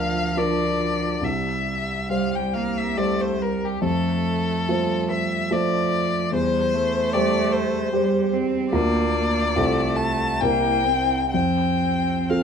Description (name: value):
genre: classical, slow romantic movement for piano trio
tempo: 62-76 BPM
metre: 3/4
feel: rubato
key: F major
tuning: A4 = 441 Hz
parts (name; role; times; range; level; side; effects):
- rich violin; melody; 0.0-12.4 s; G4 to A5; -24 LUFS; left 4 dB; none
- clear cello; second line; 0.0-12.4 s; F3 to C4; -27 LUFS; right 6 dB; none
- dark grand piano; accompaniment; 0.0-12.4 s; C2 to C5; -23 LUFS; equal; none
room: light reverb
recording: none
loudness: -20 LUFS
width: side -7 dB against mid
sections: 0.0-12.4 A section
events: none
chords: 0.0 Bb/D; 1.2 C; 3.8 F; 6.3 C/E; 8.7 Bb/D; 9.6 F/C; 10.4 C7; 11.3 F5